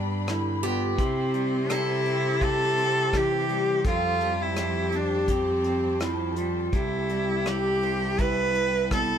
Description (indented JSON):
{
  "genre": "acoustic folk-pop ballad",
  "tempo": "84 BPM",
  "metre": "4/4",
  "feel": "straight",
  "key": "C major",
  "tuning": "A4 = 440 Hz",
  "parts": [
    { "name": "electric guitar through a small old amp", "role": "accompaniment", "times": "0.0-9.2 s", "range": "F2 to G4", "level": "-32 LUFS", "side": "equal", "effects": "none" },
    { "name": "rich chamber string section", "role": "sustained chords", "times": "0.0-9.2 s", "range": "G4 to C6", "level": "-38 LUFS", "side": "left 3 dB", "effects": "none" },
    { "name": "warm cello", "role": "bass", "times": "0.0-9.2 s", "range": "C2 to C3", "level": "-31 LUFS", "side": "equal", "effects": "none" },
    { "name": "dark clarinet", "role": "second line", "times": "0.3-9.2 s", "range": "E4 to A4", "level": "-29 LUFS", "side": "left 1 dB", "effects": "none" },
    { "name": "soft brush drum kit", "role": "drums", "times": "0.3-9.1 s", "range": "hi-hat, kick drum, rim click", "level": "-29 LUFS", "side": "equal", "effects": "none" },
    { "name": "picked acoustic archtop guitar", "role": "arpeggios", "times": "0.6-3.2 s", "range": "G4 to A4", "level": "-33 LUFS", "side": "right 3 dB", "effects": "none" },
    { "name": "clear cello", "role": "melody", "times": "0.9-9.2 s", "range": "B3 to B4", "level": "-27 LUFS", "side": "right 2 dB", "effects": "none" }
  ],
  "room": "moderate studio reverb, RT60 0.8 s",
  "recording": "none",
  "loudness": "-23 LUFS",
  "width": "side -8 dB against mid",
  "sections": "0.0-9.2 A section",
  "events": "none",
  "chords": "0.0 G; 1.0 C; 3.9 Fadd9; 6.7 C"
}